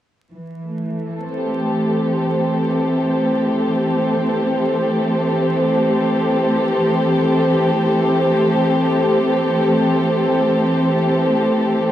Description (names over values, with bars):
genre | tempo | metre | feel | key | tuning
ambient | free time | none | none | A minor | A4 = 440 Hz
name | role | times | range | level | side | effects
dark studio string section | sustained chords | 0.3-11.9 s | E3 to A4 | -15 LUFS | equal | low-pass filter
room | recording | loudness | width
moderate huge ambient reverb, RT60 7.6 s | vinyl crackle | -15 LUFS | side -12 dB against mid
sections
0.3-11.9 A section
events
filter sweep on string section 0.3-11.9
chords
0.3 Am7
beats
free time